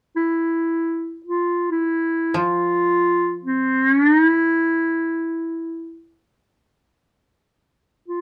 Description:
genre	japanese traditional, Japanese chamber music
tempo	free time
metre	none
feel	none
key	unclear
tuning	A4 = 440 Hz
part	mellow clarinet	melody	0.2-8.2 s	E4 to F4	-20 LUFS	equal	none
part	koto	accompaniment	2.3-5.2 s	F3	-32 LUFS	equal	none
room	moderate studio reverb, RT60 0.5 s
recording	dark, warm production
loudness	-20 LUFS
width	mono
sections	0.0-8.2 A section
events	none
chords	none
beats	free time

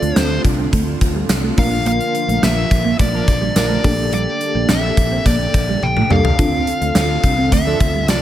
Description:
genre	1980s-style pop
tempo	106 BPM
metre	4/4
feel	straight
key	D minor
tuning	A4 = 440 Hz
part	dark smooth lead guitar	melody	0.0-8.2 s	D5 to G5	-21 LUFS	left 1 dB	overdrive, tape echo
part	FM electric piano with tremolo	accompaniment	0.0-8.2 s	Bb3 to Bb4	-23 LUFS	left 1 dB	phaser
part	brassy analog pad	sustained chords	0.0-8.2 s	D3 to A4	-27 LUFS	right 1 dB	chorus
part	mellow electric guitar	riff	0.0-8.1 s	G3 to D4	-24 LUFS	right 4 dB	ensemble chorus
part	fretless electric bass	bass	0.0-8.2 s	Bb1 to D2	-21 LUFS	equal	none
part	gated 80s drum kit	drums	0.0-8.2 s	hi-hat, kick drum, snare drum, tambourine, toms	-18 LUFS	equal	none
part	analog synth brass	stabs	3.1-3.8, 7.7-8.2 s	F3 to Bb4	-24 LUFS	right 4 dB	chorus
room	light reverb, studio ambience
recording	none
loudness	-14 LUFS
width	side -12 dB against mid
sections	0.0-8.2 A section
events	drum fill 5.8-6.4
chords	0.0 Dm7; 1.6 Bb; 3.8 Gmadd9/Bb; 6.4 Dm7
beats	0.16 0.73 1.30 | 1.86 2.43 2.99 3.56 | 4.13 4.69 5.26 5.83 | 6.39 6.96 7.52 8.09

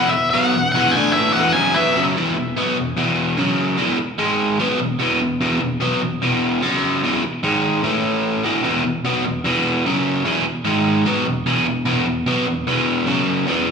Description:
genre	rock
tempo	148 BPM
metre	4/4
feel	straight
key	E major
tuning	A4 = 441 Hz
part	octave-fuzz lead guitar	melody	0.0-2.0 s	E5 to G#5	-19 LUFS	left 2 dB	distortion, slapback echo, analog delay
part	biting overdriven guitar	riff	0.0-13.7 s	E2 to D4	-17 LUFS	equal	slapback echo
room	light reverb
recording	live gig heard through the venue's PA, club reverb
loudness	-16 LUFS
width	side -6 dB against mid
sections	0.0-2.2 A section; 2.2-13.7 B section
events	none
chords	0.0 E5; 3.4 F#5; 3.8 E5; 4.2 G#5; 4.6 E5; 6.6 F#5; 7.0 E5; 7.4 G#5; 7.8 A5; 8.4 E5; 9.9 F#5; 10.3 E5; 10.7 G#5; 11.1 E5; 13.1 F#5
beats	0.14 | 0.54 0.95 1.35 1.76 | 2.16 2.57 2.97 3.38 | 3.79 4.19 4.60 5.00 | 5.41 5.81 6.22 6.62 | 7.03 7.43 7.83 8.24 | 8.64 9.05 9.45 9.85 | 10.26 10.66 11.06 11.46 | 11.87 12.27 12.67 13.08 | 13.48

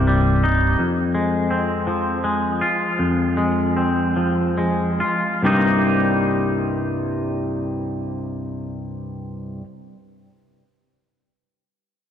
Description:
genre	rock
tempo	67-84 BPM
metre	3/4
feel	straight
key	C minor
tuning	A4 = 440 Hz
part	twangy electric guitar	arpeggios	0.0-9.6 s	C2 to F4	-19 LUFS	left 1 dB	lush chorus, analog delay
part	growling picked electric bass	bass	0.0-0.7 s	C1	-18 LUFS	right 1 dB	overdrive
room	wet lush hall reverb, RT60 2.0 s, small room ambience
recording	dreamy mix soaked in reverb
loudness	-18 LUFS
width	side -9 dB against mid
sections	0.0-5.4 A section; 5.4-10.8 B section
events	slowing down 0.8-5.4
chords	0.0 Cm7; 0.8 Fm; 5.4 Cm7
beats	0.07 | 0.78 1.50 2.23 | 2.98 3.76 4.58 | 5.44 6.33 7.22 | 8.11 9.01

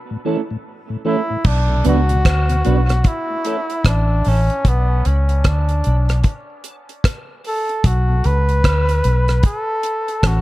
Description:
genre	dub reggae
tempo	75 BPM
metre	4/4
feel	swing 62% on 16ths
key	B minor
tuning	A4 = 440 Hz
part	mellow tonewheel organ	accompaniment	0.1-8.2 s	A2 to D4	-26 LUFS	left 3 dB	overdrive, chorus vibrato, high-pass filter
part	clean electric guitar	accompaniment	0.2-4.5 s	A3 to B4	-25 LUFS	right 8 dB	high-pass filter, dub echo
part	clear flugelhorn	melody	1.1-10.4 s	B3 to B4	-22 LUFS	equal	dub echo
part	damped 70s drum kit	drums	1.4-10.4 s	crash cymbal, hi-hat, kick drum, rim click	-18 LUFS	equal	none
part	vintage muted fingered electric bass	bass	1.5-10.4 s	A1 to D2	-15 LUFS	equal	none
room	light reverb, studio reverb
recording	dark, warm production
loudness	-15 LUFS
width	side -17 dB against mid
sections	0.0-1.4 A section; 1.4-10.4 A section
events	break 0.0-1.4; filter sweep 1.4-7.8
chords	0.0 A; 1.4 Bm; 3.0 A; 4.6 Bm; 6.2 A; 7.8 Bm; 9.4 A5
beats	0.65 | 1.45 2.25 3.04 3.84 | 4.64 5.44 6.24 7.04 | 7.84 8.64 9.44 10.23

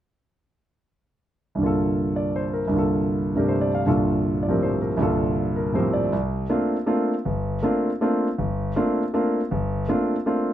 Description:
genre	jazz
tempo	159 BPM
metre	3/4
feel	swing 65% on 8ths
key	unclear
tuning	A4 = 440 Hz
part	warm concert grand piano	solo	1.6-10.5 s	G1 to F5	-21 LUFS	equal	none
room	moderate club reverb, RT60 0.6 s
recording	none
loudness	-21 LUFS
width	side -11 dB against mid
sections	1.6-6.1 A section; 6.1-10.5 B section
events	none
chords	1.6 C13sus4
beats	| 1.58 1.96 2.34 | 2.72 3.10 3.48 | 3.85 4.23 4.61 | 4.99 5.36 5.74 | 6.12 6.50 6.87 | 7.25 7.63 8.01 | 8.38 8.76 9.14 | 9.52 9.89 10.27

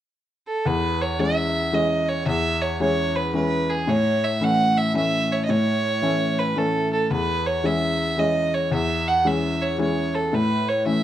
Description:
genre	celtic folk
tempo	112 BPM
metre	3/4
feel	swing 64% on 8ths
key	E major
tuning	A4 = 440 Hz
part	rich fiddle	melody	0.5-11.0 s	G#4 to F#5	-23 LUFS	right 2 dB	none
part	clear upright piano	accompaniment	0.7-11.0 s	E2 to C#4	-23 LUFS	left 2 dB	none
room	wet studio reverb, RT60 0.5 s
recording	heard from further back in the room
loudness	-20 LUFS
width	side -11 dB against mid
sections	0.7-11.0 A section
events	none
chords	0.0 N.C.; 0.7 E6; 3.9 A; 7.1 E6; 10.3 A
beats	0.13 | 0.66 1.20 1.74 | 2.27 2.81 3.35 | 3.88 4.42 4.96 | 5.49 6.03 6.57 | 7.11 7.64 8.18 | 8.72 9.26 9.79 | 10.33 10.87

